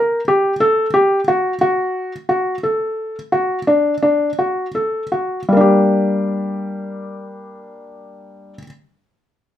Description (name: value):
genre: contemporary instrumental, contemporary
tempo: 160-182 BPM (eighths)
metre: 7/8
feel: straight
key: G harmonic minor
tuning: A4 = 440 Hz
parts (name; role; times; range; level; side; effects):
- felt-muted upright piano; arpeggios; 0.0-8.7 s; G3 to Bb4; -16 LUFS; left 1 dB; none
room: moderate studio reverb, RT60 0.5 s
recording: none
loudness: -15 LUFS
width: side -11 dB against mid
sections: 0.0-5.5 A section; 5.5-8.0 B section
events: slowing down 0.6-5.5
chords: 0.0 Gm; 0.6 D (rootless); 5.5 Gm